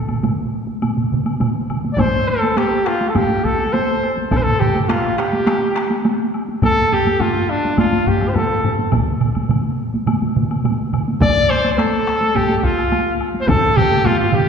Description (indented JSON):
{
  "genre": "japanese traditional, taiko drum ensemble",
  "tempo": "104 BPM",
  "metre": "4/4",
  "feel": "straight",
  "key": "G suspended pentatonic",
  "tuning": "A4 = 440 Hz",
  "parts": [
    { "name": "taiko ensemble", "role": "percussion", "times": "0.1-14.2 s", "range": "none", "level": "-21 LUFS", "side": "right 1 dB", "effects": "none" },
    { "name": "taiko ensemble", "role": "percussion", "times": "0.1-14.5 s", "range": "none", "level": "-21 LUFS", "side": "right 3 dB", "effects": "none" },
    { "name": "woodblock", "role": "percussion", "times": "0.1-14.2 s", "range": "none", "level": "-32 LUFS", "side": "left 2 dB", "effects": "none" },
    { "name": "clear trumpet", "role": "melody", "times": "1.9-14.5 s", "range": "D4 to D5", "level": "-18 LUFS", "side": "equal", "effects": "none" },
    { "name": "taiko ensemble", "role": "percussion", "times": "2.0-14.5 s", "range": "none", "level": "-24 LUFS", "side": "left 3 dB", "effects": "none" },
    { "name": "taiko ensemble", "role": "percussion", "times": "2.0-13.6 s", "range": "none", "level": "-24 LUFS", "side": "equal", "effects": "none" }
  ],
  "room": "wet concert hall reverb, RT60 2.2 s",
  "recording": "heard from further back in the room",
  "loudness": "-15 LUFS",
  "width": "side -6 dB against mid",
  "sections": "0.0-14.5 A section",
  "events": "speeding up 0.0-14.5",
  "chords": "none",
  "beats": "0.23 0.82 1.41 | 1.99 2.57 3.15 3.73 | 4.32 4.89 5.47 6.05 | 6.63 7.21 7.78 8.36 | 8.93 9.50 10.07 10.65 | 11.22 11.79 12.36 12.92 | 13.49 14.06"
}